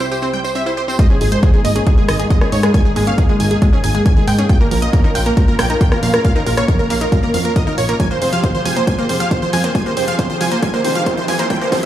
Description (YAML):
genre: uplifting trance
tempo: 137 BPM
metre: 4/4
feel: straight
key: Ab major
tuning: A4 = 440 Hz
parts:
  - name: supersaw stab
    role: melody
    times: 0.0-11.9 s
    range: Ab4 to Ab5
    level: -20 LUFS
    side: right 1 dB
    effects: sidechain pumping, ping-pong delay
  - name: dark grand piano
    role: second line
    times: 0.0-0.9 s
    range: C5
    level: -35 LUFS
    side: equal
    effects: none
  - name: lush unison pad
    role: sustained chords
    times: 0.0-11.9 s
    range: C2 to G5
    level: -26 LUFS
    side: left 1 dB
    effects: chorus, sidechain pumping
  - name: analog pluck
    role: arpeggios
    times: 0.0-11.9 s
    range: C3 to G4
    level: -21 LUFS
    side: right 1 dB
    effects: chorus, sidechain pumping, dub echo
  - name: tambourine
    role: percussion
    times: 0.0-1.0 s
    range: none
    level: -32 LUFS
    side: right 2 dB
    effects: none
  - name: big-room dance drum kit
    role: drums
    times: 1.0-11.9 s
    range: hi-hat, rim click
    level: -24 LUFS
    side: equal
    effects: none
  - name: electronic kick drum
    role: drums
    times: 1.0-11.8 s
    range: none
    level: -15 LUFS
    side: equal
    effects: none
  - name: plucky analog bass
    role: bass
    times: 1.2-11.9 s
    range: F1 to Bb2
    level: -19 LUFS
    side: equal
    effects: sidechain pumping
  - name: riser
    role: sound effects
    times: 9.3-11.9 s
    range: none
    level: -26 LUFS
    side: right 2 dB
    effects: none
room: light reverb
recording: played on a big sound system in a bare room, large studio reverb, high-pass filter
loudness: -13 LUFS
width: side -12 dB against mid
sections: 1.0-11.9 A section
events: build-up 1.0-11.9; filter sweep on synth pluck 1.0-11.9; filter sweep 1.0-11.9; drum fill 8.0-11.9; riser 9.3-11.9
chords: 0.0 C; 1.0 Absus2; 4.5 Bbm; 8.0 Fmadd9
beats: 0.12 0.55 | 0.99 1.43 1.87 2.30 | 2.74 3.18 3.62 4.06 | 4.49 4.93 5.37 5.81 | 6.25 6.68 7.12 7.56 | 8.00 8.44 8.87 9.31 | 9.75 10.19 10.63 11.06 | 11.50